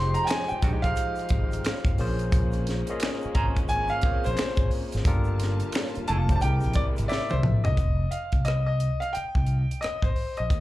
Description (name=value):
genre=R&B, neo-soul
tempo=88 BPM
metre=4/4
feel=swing 63% on 16ths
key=unclear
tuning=A4 = 441 Hz
part: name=bright concert grand piano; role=melody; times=0.0-10.6 s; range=C5 to C6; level=-30 LUFS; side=equal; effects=slapback echo, tape echo
part: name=barky tine electric piano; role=accompaniment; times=0.0-7.8 s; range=Ab3 to Eb5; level=-33 LUFS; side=left 3 dB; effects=overdrive, slapback echo
part: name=warm studio string section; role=sustained chords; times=0.0-7.8 s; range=C3 to A5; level=-39 LUFS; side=equal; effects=none
part: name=mellow fretless electric bass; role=bass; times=0.0-10.6 s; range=F1 to Eb2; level=-26 LUFS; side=equal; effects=none
part: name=tight funk drum kit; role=drums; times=0.1-10.6 s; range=finger snaps, hi-hat, kick drum, rim click, snare drum, toms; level=-26 LUFS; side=equal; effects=none
part: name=egg shaker and finger snaps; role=percussion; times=0.1-7.8 s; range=none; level=-48 LUFS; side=right 2 dB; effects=none
part: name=semi-hollow electric guitar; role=second line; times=0.3-6.3 s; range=Ab3 to C5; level=-36 LUFS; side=right 3 dB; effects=harmonic tremolo, slapback echo
room=little or no reverb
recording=live gig heard through the venue's PA, club reverb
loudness=-23 LUFS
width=side -16 dB against mid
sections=0.0-7.8 A section; 7.8-10.6 B section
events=drum fill 7.1-7.8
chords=0.0 Fm9; 2.0 Bbm9; 5.0 Gm9; 6.4 C7b13; 7.8 Fsus2